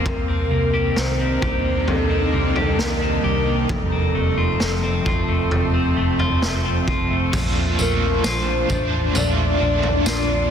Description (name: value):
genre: dream pop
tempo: 66 BPM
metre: 4/4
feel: straight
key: Bb major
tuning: A4 = 438 Hz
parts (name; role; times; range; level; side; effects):
- shimmering ambient pad; sustained chords; 0.0-10.5 s; C3 to Eb4; -25 LUFS; equal; chorus, built-in reverb
- clean electric guitar; arpeggios; 0.0-10.5 s; F2 to G4; -24 LUFS; left 2 dB; lush chorus, ping-pong delay
- warbly nostalgic lead; melody; 0.1-10.5 s; A4 to D5; -26 LUFS; equal; chorus, ping-pong delay
- vintage muted fingered electric bass; bass; 0.1-10.5 s; F1 to C2; -24 LUFS; equal; none
- raw garage drum kit; drums; 0.1-10.3 s; crash cymbal, kick drum, snare drum, tambourine, toms; -23 LUFS; equal; none
- cranked stack guitar; accompaniment; 7.3-10.5 s; Bb2 to F4; -26 LUFS; right 4 dB; overdrive, tremolo, analog chorus
room: light reverb, small room ambience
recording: dense, heavily limited modern master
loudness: -18 LUFS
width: side -8 dB against mid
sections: 0.0-7.3 A section; 7.3-10.5 B section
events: none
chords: 0.1 Cm7; 3.7 F; 7.3 Bbmaj7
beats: | 0.06 0.97 1.88 2.79 | 3.69 4.60 5.51 6.42 | 7.33 8.24 9.15 10.06